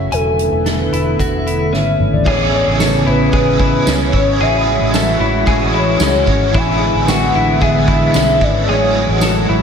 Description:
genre	dream pop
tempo	112 BPM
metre	4/4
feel	straight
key	A major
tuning	A4 = 441 Hz
part	hollow clarinet-like synth lead	melody	0.0-9.2 s	A4 to G#5	-18 LUFS	left 1 dB	chorus, ping-pong delay
part	lush unison pad	sustained chords	0.0-9.6 s	C#3 to G#4	-18 LUFS	equal	chorus
part	clean electric guitar	arpeggios	0.0-9.6 s	C#4 to G#5	-20 LUFS	left 3 dB	wide subtle chorus, ping-pong delay
part	vintage muted fingered electric bass	bass	0.0-9.6 s	E1 to C#2	-19 LUFS	equal	none
part	soft-mallet drum kit	drums	0.1-9.6 s	crash cymbal, hi-hat, kick drum, ride cymbal, snare drum, tambourine, toms	-20 LUFS	equal	none
part	overdriven semi-hollow guitar	accompaniment	2.2-9.6 s	A2 to F#4	-21 LUFS	right 3 dB	tremolo, ensemble chorus
part	worn celesta	texture	2.3-7.1 s	E5 to C#6	-32 LUFS	right 2 dB	none
room	wet lush hall reverb, RT60 1.7 s, small room reverb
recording	dreamy mix soaked in reverb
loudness	-12 LUFS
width	side -6 dB against mid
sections	0.0-2.3 A section; 2.3-9.6 B section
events	drum fill 1.7-2.3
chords	0.1 E7sus4; 2.3 Amaj9; 4.4 F#m9/A; 6.5 E7/A; 8.7 F#m9/A

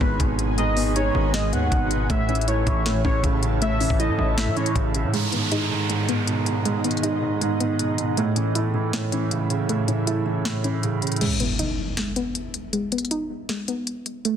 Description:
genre	hip hop, trap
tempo	158 BPM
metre	4/4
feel	half-time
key	G# phrygian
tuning	A4 = 438 Hz
part	warm velvety synth lead	second line	0.0-4.7 s	B4 to F#5	-28 LUFS	left 2 dB	chorus, digital delay
part	warm baby grand piano	accompaniment	0.0-11.2 s	G#2 to A3	-24 LUFS	right 3 dB	none
part	ethereal airy pad	sustained chords	0.0-11.2 s	B3 to A5	-32 LUFS	equal	ensemble chorus, built-in reverb, tremolo
part	soft round pluck	arpeggios	0.0-14.4 s	G#3 to E4	-28 LUFS	equal	chorus, digital delay
part	distorted 808-style bass	bass	0.0-5.1 s	G#1 to A2	-25 LUFS	left 1 dB	distortion
part	trap drum kit	drums	0.0-14.3 s	crash cymbal, hi-hat, kick drum, snare drum	-26 LUFS	left 1 dB	vintage 12-bit sampler grit
part	downlifter and impact	sound effects	5.1-8.2, 11.2-12.7 s	none	-30 LUFS	equal	none
room	light reverb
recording	dense, heavily limited modern master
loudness	-21 LUFS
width	side -8 dB against mid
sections	0.0-5.1 A section; 5.1-11.2 B section; 11.2-14.4 C section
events	break 11.2-14.4; impact 11.2-12.7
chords	0.0 G#m; 2.1 A; 5.1 G#m; 8.2 A; 11.2 G#m

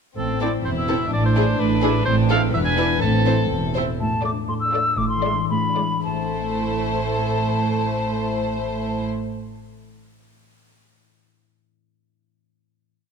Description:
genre	cinematic, playful, whimsical film cue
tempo	106-128 BPM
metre	2/4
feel	straight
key	A minor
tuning	A4 = 441 Hz
part	clear cor anglais	second line	0.2-3.5 s	A4 to A5	-25 LUFS	right 3 dB	none
part	warm studio violin section	second line	0.2-9.1 s	C4 to B4	-30 LUFS	left 5 dB	none
part	dark French horn section	sustained chords	0.2-3.7 s	E3 to D4	-29 LUFS	left 5 dB	none
part	concert harp	arpeggios	0.2-10.0 s	E2 to E5	-29 LUFS	left 14 dB	none
part	dark studio double bass section	bass	0.2-9.1 s	E1 to A1	-26 LUFS	right 4 dB	none
part	warm studio cello section	bass	0.2-9.1 s	E2 to A2	-26 LUFS	right 4 dB	none
part	dark studio violin section	melody	0.4-9.0 s	G#4 to D5	-29 LUFS	left 5 dB	none
part	warm studio viola section	accompaniment	0.4-9.1 s	G#3 to E4	-29 LUFS	right 2 dB	none
part	hollow concert flute	second line	4.0-9.0 s	A5 to E6	-25 LUFS	left 1 dB	none
room	light reverb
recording	none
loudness	-19 LUFS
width	side -6 dB against mid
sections	0.2-4.0 A section; 4.0-6.1 coda; 6.1-8.3 final chord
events	slowing down 3.5-6.1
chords	0.2 Am; 1.1 E7(no3)/A; 2.1 Am; 2.5 E7; 3.0 Am; 4.0 Dm/A; 5.0 E7/A; 6.1 Am

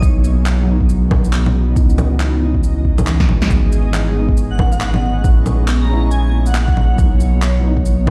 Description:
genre	future garage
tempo	138 BPM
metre	4/4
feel	swing 61% on 16ths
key	unclear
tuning	A4 = 439 Hz
part	felt-muted upright piano	accompaniment	0.0-8.1 s	E3 to E4	-24 LUFS	equal	sidechain pumping, tape echo
part	granular cloud pad	sustained chords	0.0-8.1 s	E3 to D#5	-28 LUFS	equal	built-in reverb, sidechain pumping
part	warm sub bass	bass	0.0-8.1 s	G#1 to C#2	-18 LUFS	equal	none
part	electronic kick drum	drums	0.0-8.1 s	none	-17 LUFS	equal	overdrive
part	electronic shaker, handclaps, bongos and snare drum	drums	0.0-8.1 s	none	-24 LUFS	equal	overdrive
part	backwards swelling texture	texture	5.1-8.1 s	C#5	-36 LUFS	equal	built-in reverb
part	airy dreamy lead	melody	4.5-7.0 s	F#5 to A#5	-30 LUFS	equal	chorus, phaser, tape echo
room	digital ambience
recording	played on a big sound system in a bare room, stone room reverb, vinyl crackle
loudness	-15 LUFS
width	mono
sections	0.0-8.1 A section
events	filter sweep on felt piano 0.0-8.1; drum fill 3.2-3.5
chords	0.0 B; 1.8 C#madd9; 3.5 G#m; 5.2 A#m7b5; 7.0 B

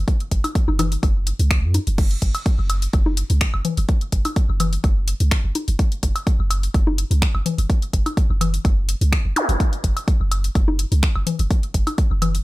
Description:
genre	minimal techno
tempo	126 BPM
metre	4/4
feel	swing 53% on 16ths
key	unclear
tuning	A4 = 442 Hz
part	punchy sub bass	bass	0.0-12.4 s	F#1 to F#2	-20 LUFS	equal	sidechain pumping
part	electronic kick drum	drums	0.1-12.1 s	none	-19 LUFS	equal	overdrive, small room ambience
part	house drum kit	drums	0.1-12.4 s	crash cymbal, finger snaps, hi-hat	-28 LUFS	left 2 dB	overdrive, small room ambience
part	bongos, woodblock and congas	percussion	0.4-12.3 s	none	-25 LUFS	left 3 dB	small room ambience, ping-pong delay
part	zap	sound effects	9.4-9.5 s	none	-23 LUFS	equal	none
room	little or no reverb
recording	none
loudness	-17 LUFS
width	side -19 dB against mid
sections	0.0-12.4 A section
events	none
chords	none

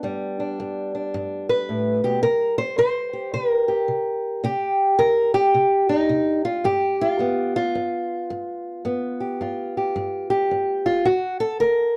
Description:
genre	acoustic country blues, solo or duo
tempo	109 BPM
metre	4/4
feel	swing 64% on 8ths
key	G mixolydian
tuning	A4 = 439 Hz
part	fingerpicked old ladder-braced acoustic guitar	solo	0.0-12.0 s	D2 to C5	-22 LUFS	equal	none
room	light reverb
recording	dark, warm production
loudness	-22 LUFS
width	mono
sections	0.0-12.0 A section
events	none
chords	0.0 G; 2.2 C5; 4.4 N.C.; 6.6 G7; 11.1 D

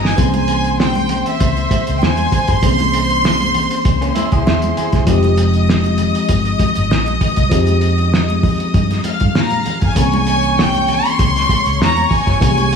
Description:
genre	lush 1970s-style soul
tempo	98 BPM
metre	4/4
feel	swing 54% on 16ths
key	unclear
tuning	A4 = 439 Hz
part	warm studio string section	second line	0.0-12.8 s	C5 to F6	-22 LUFS	left 2 dB	none
part	tine electric piano	accompaniment	0.0-12.8 s	C3 to Ab5	-20 LUFS	left 4 dB	phaser
part	vintage muted fingered electric bass	bass	0.0-12.8 s	F1 to Bb2	-18 LUFS	right 1 dB	none
part	cloth-damped thuddy drum kit	drums	0.0-12.8 s	hi-hat, kick drum, snare drum	-18 LUFS	right 1 dB	none
part	warm studio violin section	melody	0.1-4.3, 9.4-12.8 s	E5 to C6	-18 LUFS	equal	analog delay
part	congas	percussion	0.2-12.7 s	none	-25 LUFS	right 7 dB	none
part	electric guitar through a small old amp	riff	4.0-5.0 s	Bb3 to Ab4	-22 LUFS	right 5 dB	none
room	small room ambience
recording	studio reverb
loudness	-13 LUFS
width	side -6 dB against mid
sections	0.2-12.8 A section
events	drum fill 0.0; tine electric piano fill 4.2-5.1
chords	0.2 C7b9b13; 5.1 Fm9; 10.0 C7b9b13

